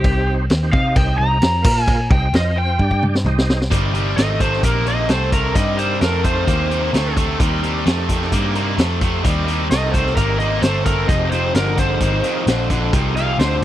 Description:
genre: blues rock power trio and southern rock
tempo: 130 BPM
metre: 4/4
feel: straight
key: C minor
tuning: A4 = 441 Hz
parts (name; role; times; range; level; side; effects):
- overdriven slide guitar; melody; 0.0-13.6 s; G4 to Bb5; -22 LUFS; equal; none
- overdriven tonewheel organ; sustained chords; 0.0-13.6 s; Bb3 to G5; -28 LUFS; right 3 dB; slow rotary speaker, chorus vibrato
- vintage muted picked electric bass; bass; 0.0-13.6 s; F1 to C3; -20 LUFS; equal; none
- vintage drum kit; drums; 0.0-13.5 s; crash cymbal, hi-hat, kick drum, snare drum, toms; -19 LUFS; equal; none
- distorted electric guitar; riff; 3.7-13.6 s; F2 to Bb3; -21 LUFS; equal; overdrive
room: little or no reverb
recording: dry, close 1970s-style studio recording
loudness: -15 LUFS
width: side -13 dB against mid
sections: 0.0-3.7 A section; 3.7-13.6 B section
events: electric slide guitar solo 0.0-3.7; drum fill 2.8-3.7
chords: 0.0 Cm; 1.7 Bb5; 2.1 Cm; 2.3 F5; 2.8 G5; 3.3 Cm; 3.7 Cm7; 11.1 Fm7

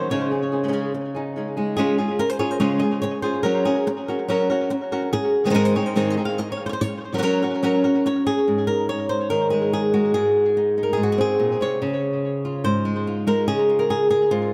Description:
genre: flamenco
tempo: 144 BPM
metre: 4/4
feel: straight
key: Db major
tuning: A4 = 440 Hz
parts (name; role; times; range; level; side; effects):
- flamenco guitar; melody; 0.0-14.5 s; Ab2 to F5; -22 LUFS; equal; tape echo
- flamenco guitar; stabs; 0.0-1.8 s; Db3 to Ab4; -31 LUFS; equal; tape echo
room: moderate echo chamber reverb, RT60 2.0 s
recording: echo-heavy mix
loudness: -22 LUFS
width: mono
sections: 0.0-1.8 A section; 1.8-8.5 B section; 8.5-14.5 C section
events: none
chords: 0.1 Dbsus2; 1.8 Db; 3.5 Gb; 5.1 Ab; 6.8 Gb; 8.5 Abadd9; 11.8 Db

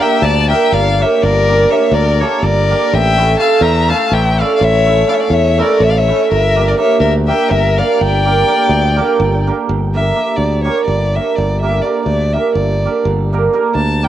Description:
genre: balkan folk, Balkan wedding band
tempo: 248 BPM (eighths)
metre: 7/8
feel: straight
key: G dorian sharp4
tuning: A4 = 440 Hz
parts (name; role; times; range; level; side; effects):
- warm violin; melody; 0.0-14.1 s; C#5 to Bb5; -17 LUFS; left 1 dB; cassette tape, analog delay
- clear violin; second line; 0.0-9.5 s; A4 to F5; -18 LUFS; left 8 dB; cassette tape, plate reverb
- cimbalom; accompaniment; 0.0-14.1 s; A3 to Bb4; -16 LUFS; right 5 dB; cassette tape
- modern bright fingered electric bass; bass; 0.2-14.1 s; G1 to E2; -15 LUFS; equal; none
room: moderate studio reverb, RT60 0.6 s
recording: home recording on cassette, vinyl crackle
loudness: -11 LUFS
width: side -11 dB against mid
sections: 0.0-9.7 A section; 9.7-14.1 B section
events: violin solo 9.7-14.1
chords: 0.0 Gm; 2.9 A; 6.3 Gm

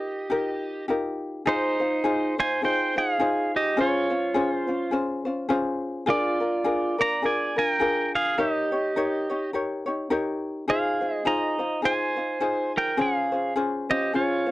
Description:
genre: Hawaiian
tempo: 104 BPM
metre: 4/4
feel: swing 59% on 8ths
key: Ab major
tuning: A4 = 440 Hz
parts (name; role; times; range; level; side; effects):
- pedal steel guitar; melody; 0.0-14.5 s; Eb4 to Bb5; -24 LUFS; right 2 dB; none
- ukulele; accompaniment; 0.0-14.5 s; Db4 to Db5; -26 LUFS; left 2 dB; none
room: little or no reverb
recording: dry, close 1970s-style studio recording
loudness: -23 LUFS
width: side -17 dB against mid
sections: 0.0-1.5 A section; 1.5-14.5 B section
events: none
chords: 0.0 Ebadd9; 1.5 Ab6; 3.8 Dbmaj7; 6.1 Bb7; 8.4 Eb7; 10.7 Fm7; 13.0 Dbmaj7

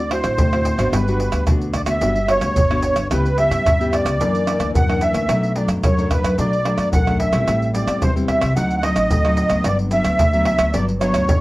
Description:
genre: samba and choro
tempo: 110 BPM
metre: 4/4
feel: straight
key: unclear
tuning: A4 = 441 Hz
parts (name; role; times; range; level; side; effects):
- musette accordion; melody; 0.0-11.4 s; B4 to F#5; -20 LUFS; right 1 dB; none
- nylon-string guitar; accompaniment; 0.0-11.4 s; F#2 to G4; -22 LUFS; left 2 dB; none
- upright bass; bass; 0.0-11.4 s; G1 to G2; -23 LUFS; equal; none
- pandeiro, tamborim, maracas and surdo; percussion; 0.1-11.4 s; none; -21 LUFS; equal; none
room: moderate small room reverb, RT60 0.5 s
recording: worn, warbling old tape, cassette tape, warbly pitch drift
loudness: -16 LUFS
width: side -18 dB against mid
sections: 0.0-11.4 A section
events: none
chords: 0.0 D9; 0.9 Gmaj7; 3.1 C#m7b5; 4.2 F#aug7; 5.3 Bm7; 7.5 Am7; 8.6 D7b9; 9.7 Gmaj7

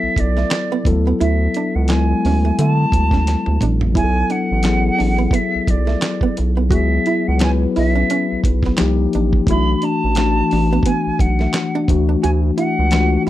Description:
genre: R&B, neo-soul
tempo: 87 BPM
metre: 4/4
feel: swing 57% on 16ths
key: B dorian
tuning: A4 = 444 Hz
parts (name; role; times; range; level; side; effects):
- silver concert flute; melody; 0.0-13.3 s; D5 to B5; -22 LUFS; right 1 dB; slapback echo
- mellow tine electric piano; accompaniment; 0.0-13.3 s; E3 to B4; -20 LUFS; left 5 dB; none
- round analog bass; bass; 0.0-13.2 s; A1 to D3; -17 LUFS; right 1 dB; none
- archtop guitar, miked and amplified; second line; 0.2-13.3 s; A3 to F#4; -23 LUFS; right 6 dB; none
- dusty soul sampler-style drum kit; drums; 0.2-13.1 s; handclaps, hi-hat, kick drum, snare drum, toms; -20 LUFS; right 1 dB; none
room: little or no reverb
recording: dry, close 1970s-style studio recording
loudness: -14 LUFS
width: side -14 dB against mid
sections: 0.0-13.3 A section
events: drum fill 3.3-4.0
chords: 0.0 Bm7; 0.8 Dmaj9#11; 4.0 Bm7; 6.7 C#m7; 8.8 Cm9; 9.5 Bm7; 11.9 Dmaj9

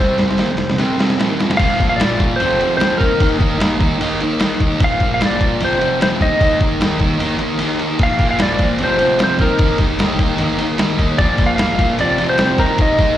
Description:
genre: garage rock duo or trio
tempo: 150 BPM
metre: 4/4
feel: straight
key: unclear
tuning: A4 = 440 Hz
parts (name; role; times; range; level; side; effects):
- clean lap steel guitar; melody; 0.0-13.2 s; Bb4 to F5; -18 LUFS; equal; slapback echo, tape echo
- fuzz guitar; riff; 0.0-13.2 s; F2 to Eb4; -18 LUFS; equal; distortion
- lo-fi sampler-style drum kit; drums; 0.2-13.1 s; crash cymbal, kick drum, ride cymbal, snare drum; -18 LUFS; equal; none
room: light reverb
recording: live gig heard through the venue's PA, recital hall reverb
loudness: -13 LUFS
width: side -12 dB against mid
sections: 0.0-1.6 A section; 1.6-13.2 B section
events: drum fill 0.0-1.6; kick and snare drop out 7.6-8.0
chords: 0.4 F5; 1.6 Bb; 2.4 F5; 3.0 Eb5; 4.8 Bb; 5.6 F5; 6.2 Eb5; 8.0 Bb; 8.8 F5; 9.4 Eb5; 11.2 Bb5; 12.0 F5; 12.6 Eb5

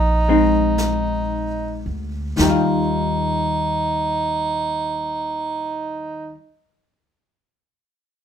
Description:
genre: jazz ballad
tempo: 36 BPM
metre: 4/4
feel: swing 68% on 8ths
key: Eb major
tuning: A4 = 439 Hz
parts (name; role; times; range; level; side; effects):
- warm tenor saxophone; melody; 0.0-6.4 s; Eb4; -22 LUFS; right 2 dB; none
- upright bass; bass; 0.0-6.3 s; Bb1 to Eb2; -25 LUFS; equal; none
- vintage hollow-body jazz guitar; accompaniment; 0.3-6.5 s; Eb3 to F4; -21 LUFS; left 3 dB; none
- jazz brush drum kit; drums; 0.8-3.2 s; brushed snare drum, hi-hat, snare drum; -24 LUFS; left 1 dB; none
room: moderate large studio reverb, RT60 0.8 s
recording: minimal, uncompressed stereo recording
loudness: -18 LUFS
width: side -8 dB against mid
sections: 0.0-2.4 A section; 2.4-8.2 B section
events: slowing down 0.0-2.4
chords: 0.0 Bb9sus4; 2.4 Ebadd9

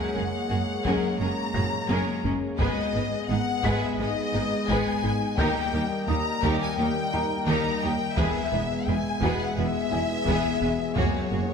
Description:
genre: cinematic, hybrid orchestral and electronic film score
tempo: 86 BPM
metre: 4/4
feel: straight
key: G# minor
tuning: A4 = 440 Hz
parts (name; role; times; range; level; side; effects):
- rich symphonic violin section; melody; 0.0-11.5 s; C#5 to A#5; -30 LUFS; left 5 dB; none
- rich symphonic violin section; second line; 0.0-11.4 s; D#4 to B4; -33 LUFS; left 2 dB; none
- clear symphonic viola section; accompaniment; 0.0-11.4 s; G#3 to D#4; -34 LUFS; equal; none
- warm analog pad; sustained chords; 0.0-11.5 s; F#3 to F#5; -31 LUFS; left 2 dB; chorus
- felt-muted upright piano; texture; 0.0-11.5 s; F#4 to B6; -38 LUFS; left 1 dB; tape echo
- harp-like synth pluck; arpeggios; 0.1-11.5 s; D#3 to G#4; -34 LUFS; left 4 dB; chorus, tape echo
- clear symphonic cello section; bass; 0.1-11.4 s; D#2 to G#2; -32 LUFS; right 3 dB; none
- rich symphonic double bass section; bass; 0.2-11.4 s; E1 to D#2; -32 LUFS; right 4 dB; none
- taiko ensemble; drums; 0.8-11.5 s; none; -33 LUFS; equal; none
- cymbal swell; sound effects; 11.4-11.5 s; none; -45 LUFS; left 2 dB; none
room: moderate scoring stage reverb, RT60 2.1 s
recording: none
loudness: -23 LUFS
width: side -6 dB against mid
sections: 0.0-11.5 A section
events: drum fill 1.5-2.6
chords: 0.0 F#add9; 2.6 G#m; 5.4 D#; 8.2 E; 11.0 F#add9

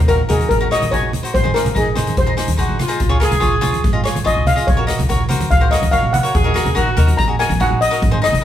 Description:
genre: calypso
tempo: 144 BPM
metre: 4/4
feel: straight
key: unclear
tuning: A4 = 442 Hz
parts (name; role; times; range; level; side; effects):
- steel pan; melody; 0.0-8.4 s; Ab4 to Bb5; -18 LUFS; left 2 dB; none
- upright bass; bass; 0.0-8.4 s; Ab1 to Eb2; -19 LUFS; equal; none
- cavaquinho; accompaniment; 0.1-8.4 s; Eb4 to Eb5; -22 LUFS; left 1 dB; none
- street-band drum kit; drums; 0.1-8.4 s; hi-hat, kick drum, rim click; -19 LUFS; right 1 dB; none
- congas; percussion; 0.3-8.4 s; none; -24 LUFS; right 1 dB; none
- mellow horn section; second line; 2.6-7.1 s; F4 to Ab4; -21 LUFS; equal; none
room: moderate studio reverb, RT60 0.8 s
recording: band playing live in one room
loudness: -14 LUFS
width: side -11 dB against mid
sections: 0.0-8.4 A section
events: steel pan solo 0.0-8.4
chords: 0.0 Ebm; 1.3 Ab; 3.0 Db; 4.7 Gb/Db; 6.3 Ebm

